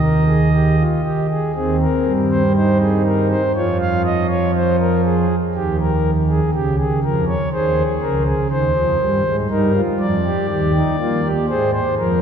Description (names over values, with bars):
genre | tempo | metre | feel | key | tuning
classical, baroque-style 3-part fugue for pipe organ | 60 BPM | 4/4 | straight | Ab major | A4 = 442 Hz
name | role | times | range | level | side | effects
pipe organ, principal | solo | 0.0-12.2 s | Db2 to F5 | -15 LUFS | right 1 dB | none
room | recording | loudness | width
wet cathedral reverb, RT60 4.4 s | minimal, uncompressed stereo recording | -15 LUFS | side -7 dB against mid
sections
0.0-1.6 A section; 1.6-12.2 B section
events
none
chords
0.0 Eb; 1.6 Ab/Eb; 3.6 Db/F; 5.5 Eb7; 7.5 Ab; 9.5 Eb; 11.5 Ab